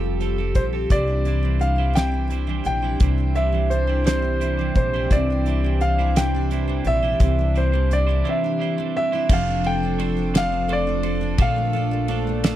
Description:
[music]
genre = six-eight pop ballad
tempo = 57 BPM (dotted quarters)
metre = 6/8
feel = straight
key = F major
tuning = A4 = 441 Hz
[part]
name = picked steel-string acoustic guitar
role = accompaniment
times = 0.0-12.6 s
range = Bb2 to A4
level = -28 LUFS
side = equal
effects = double-tracked left and right
[part]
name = warm analog pad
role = sustained chords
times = 0.0-12.6 s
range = Bb2 to A4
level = -29 LUFS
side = right 1 dB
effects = chorus
[part]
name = twelve-string electric guitar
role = arpeggios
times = 0.0-12.6 s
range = Bb2 to C5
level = -32 LUFS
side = right 10 dB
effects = none
[part]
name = upright bass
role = bass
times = 0.0-12.6 s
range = F1 to C2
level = -22 LUFS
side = equal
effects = none
[part]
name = damped 70s drum kit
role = drums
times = 0.2-12.6 s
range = crash cymbal, hi-hat, kick drum, ride cymbal, snare drum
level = -20 LUFS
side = equal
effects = none
[part]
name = clear concert grand piano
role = melody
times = 0.6-12.6 s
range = C5 to G5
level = -25 LUFS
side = equal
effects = none
[sound]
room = little or no reverb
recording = dry, close 1970s-style studio recording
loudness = -19 LUFS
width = side -13 dB against mid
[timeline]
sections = 0.0-9.3 A section; 9.3-12.6 B section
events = break 8.2-9.3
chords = 0.0 Fadd9; 0.9 Cadd9; 9.3 F6; 11.4 Bbmaj7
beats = | 0.91 1.96 | 3.01 4.06 | 5.11 6.16 | 7.20 8.25 | 9.29 10.34 | 11.38 12.43

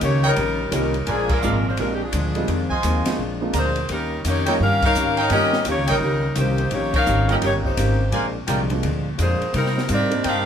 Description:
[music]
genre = jazz, big band swing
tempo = 170 BPM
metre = 4/4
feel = swing 63% on 8ths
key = unclear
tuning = A4 = 440 Hz
[part]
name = warm saxophone section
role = melody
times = 0.0-10.5 s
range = F3 to F5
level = -22 LUFS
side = left 1 dB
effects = none
[part]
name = archtop guitar, miked and amplified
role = accompaniment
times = 0.0-10.5 s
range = F2 to G4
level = -27 LUFS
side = left 3 dB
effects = none
[part]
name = upright bass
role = bass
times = 0.0-10.5 s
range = G1 to C3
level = -23 LUFS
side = right 1 dB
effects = none
[part]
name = open jazz drum kit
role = drums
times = 0.0-10.3 s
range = crash cymbal, hi-hat, kick drum, ride cymbal, snare drum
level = -28 LUFS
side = equal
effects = none
[part]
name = bright trumpet section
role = stabs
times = 0.2-10.5 s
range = Eb4 to Bb5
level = -25 LUFS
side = right 2 dB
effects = none
[part]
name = warm concert grand piano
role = accompaniment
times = 0.7-10.2 s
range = G3 to G4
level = -28 LUFS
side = right 4 dB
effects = none
[sound]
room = moderate club reverb, RT60 0.6 s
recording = minimal, uncompressed stereo recording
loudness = -18 LUFS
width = side -8 dB against mid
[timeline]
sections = 0.0-10.5 A section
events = band accent 1.2, 4.8, 6.9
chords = 0.0 Eb7; 1.1 Bb7; 2.5 Fm7; 3.2 Bb7; 3.9 Eb7; 8.1 Bb7; 9.5 Cm7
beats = 0.01 0.37 0.72 | 1.07 1.43 1.78 2.13 | 2.48 2.84 3.19 3.54 | 3.90 4.25 4.60 4.95 | 5.31 5.66 6.01 6.36 | 6.72 7.07 7.42 7.77 | 8.13 8.48 8.83 9.18 | 9.54 9.89 10.24

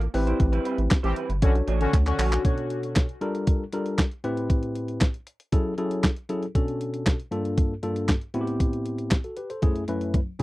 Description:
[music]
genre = early-eighties boogie funk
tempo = 117 BPM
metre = 4/4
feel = straight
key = B minor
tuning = A4 = 440 Hz
[part]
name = electric guitar through a small old amp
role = riff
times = 0.0-2.4 s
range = G3 to C#5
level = -33 LUFS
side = right 6 dB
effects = analog chorus
[part]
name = rubbery square bass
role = bass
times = 0.0-2.4 s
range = G1 to D2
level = -24 LUFS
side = equal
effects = none
[part]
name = crisp 8-bit digital drum machine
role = drums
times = 0.0-10.4 s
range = handclaps, hi-hat, kick drum, snare drum, toms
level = -22 LUFS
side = equal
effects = none
[part]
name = tine electric piano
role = accompaniment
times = 0.1-10.4 s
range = F#2 to C#5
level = -28 LUFS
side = left 1 dB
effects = none
[part]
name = analog synth brass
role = second line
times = 1.0-2.4 s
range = D3 to G4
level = -29 LUFS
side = left 2 dB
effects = chorus, tape echo
[sound]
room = little or no reverb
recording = dry, close 1970s-style studio recording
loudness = -23 LUFS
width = side -19 dB against mid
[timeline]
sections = 0.0-2.4 A section; 2.4-10.4 B section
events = band accent 0.4-2.4; drum fill 1.9-2.4, 10.1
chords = 0.1 Am9; 1.4 Bm9; 3.2 Gm9; 4.2 Am9; 5.5 F#m9; 6.6 Bm9; 7.3 Gm9; 8.3 Am9; 9.6 F#m9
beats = | 0.40 0.91 1.42 1.94 | 2.45 2.96 3.47 3.99 | 4.50 5.01 5.53 6.04 | 6.55 7.06 7.58 8.09 | 8.60 9.12 9.63 10.14

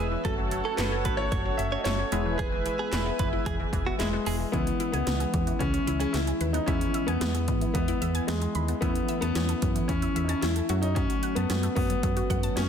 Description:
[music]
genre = synth-pop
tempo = 112 BPM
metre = 4/4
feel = straight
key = E major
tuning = A4 = 443 Hz
[part]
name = direct-recorded clean electric guitar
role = second line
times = 0.0-4.4 s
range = E4 to C#5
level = -35 LUFS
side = right 4 dB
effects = tape echo
[part]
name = funky polysynth comp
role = accompaniment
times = 0.0-12.7 s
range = E3 to A4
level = -34 LUFS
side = left 1 dB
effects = chorus
[part]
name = warm analog pad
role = sustained chords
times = 0.0-4.5 s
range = B4 to E6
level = -35 LUFS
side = equal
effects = chorus
[part]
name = resonant blip pluck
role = arpeggios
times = 0.0-12.6 s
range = E3 to C#6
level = -36 LUFS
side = equal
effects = phaser
[part]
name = solid FM bass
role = bass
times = 0.0-12.7 s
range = E1 to G#2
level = -30 LUFS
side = equal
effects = none
[part]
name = 80s electronic pad drums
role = drums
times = 0.2-12.7 s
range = handclaps, hi-hat, kick drum, snare drum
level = -31 LUFS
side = equal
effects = overdrive
[part]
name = warm concert grand piano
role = melody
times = 0.8-12.7 s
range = G#3 to E5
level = -30 LUFS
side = left 2 dB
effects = none
[sound]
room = light reverb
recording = dense, heavily limited modern master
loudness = -25 LUFS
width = side -8 dB against mid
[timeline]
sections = 0.0-4.5 A section; 4.5-12.7 B section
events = none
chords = 0.2 F#m7; 2.1 E; 4.5 C#m7; 6.7 E; 8.8 A/E; 10.7 F#m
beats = | 0.25 0.78 1.32 1.86 | 2.39 2.93 3.46 4.00 | 4.53 5.07 5.61 6.14 | 6.68 7.21 7.75 8.28 | 8.82 9.36 9.89 10.43 | 10.96 11.50 12.03 12.57

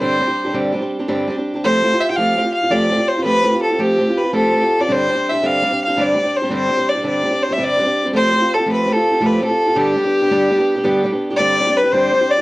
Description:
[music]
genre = celtic folk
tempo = 111 BPM (dotted quarters)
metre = 9/8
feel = straight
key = G mixolydian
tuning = A4 = 440 Hz
[part]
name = rich fiddle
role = melody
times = 0.0-12.4 s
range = G4 to G5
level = -16 LUFS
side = equal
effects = cassette tape
[part]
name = picked steel-string acoustic guitar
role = accompaniment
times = 0.0-12.4 s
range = G2 to G4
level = -18 LUFS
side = right 1 dB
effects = cassette tape
[part]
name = bright wooden flute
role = second line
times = 11.4-12.4 s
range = B4 to D5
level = -17 LUFS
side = left 2 dB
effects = cassette tape
[sound]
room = wet studio reverb, RT60 0.6 s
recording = home recording on cassette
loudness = -14 LUFS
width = side -19 dB against mid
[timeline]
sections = 0.0-11.4 A section; 11.4-12.4 A section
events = none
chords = 0.0 Gsus4; 1.6 Fadd9; 4.9 Gsus4; 8.1 Fadd9; 9.8 G; 11.4 Gsus4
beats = | 0.00 0.54 1.08 | 1.63 2.17 2.71 | 3.25 3.79 4.34 | 4.88 5.42 5.96 | 6.50 7.05 7.59 | 8.13 8.68 9.22 | 9.76 10.30 10.85 | 11.39 11.93

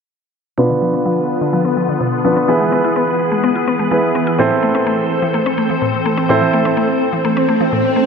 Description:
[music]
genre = pop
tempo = 126 BPM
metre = 4/4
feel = straight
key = A harmonic minor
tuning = A4 = 441 Hz
[part]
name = warm concert grand piano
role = accompaniment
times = 0.6-8.1 s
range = B3 to C5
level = -17 LUFS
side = right 2 dB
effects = low-pass filter
[part]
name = glassy FM pad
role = sustained chords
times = 0.6-8.1 s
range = D3 to C5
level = -19 LUFS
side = left 2 dB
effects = ensemble chorus, built-in reverb, low-pass filter
[part]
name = mallet-like synth pluck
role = arpeggios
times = 0.6-8.1 s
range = A2 to E4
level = -19 LUFS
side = left 3 dB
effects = chorus, low-pass filter, ping-pong delay
[part]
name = swell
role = sound effects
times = 7.0-8.1 s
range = none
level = -18 LUFS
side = right 2 dB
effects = none
[sound]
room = wet lush hall reverb, RT60 2.5 s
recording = none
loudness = -13 LUFS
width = side -6 dB against mid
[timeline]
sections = 0.6-8.1 A section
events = filter sweep 0.6-8.1; swell 7.0-8.1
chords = 0.6 Bdim; 2.5 E; 4.4 Am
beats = | 0.58 1.06 1.53 2.01 | 2.49 2.96 3.44 3.91 | 4.39 4.87 5.34 5.82 | 6.29 6.77 7.25 7.72

